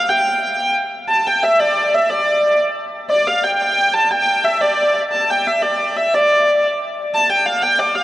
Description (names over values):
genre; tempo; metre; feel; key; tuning
medieval; 119 BPM (dotted quarters); 6/8; straight; unclear; A4 = 444 Hz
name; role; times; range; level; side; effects
rich hurdy-gurdy; solo; 0.0-8.0 s; D5 to A5; -14 LUFS; equal; none
room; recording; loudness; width
wet cathedral reverb, RT60 5.2 s; worn, warbling old tape, cassette tape, warbly pitch drift; -14 LUFS; side -15 dB against mid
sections
0.0-1.1 A section; 1.1-8.0 B section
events
none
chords
none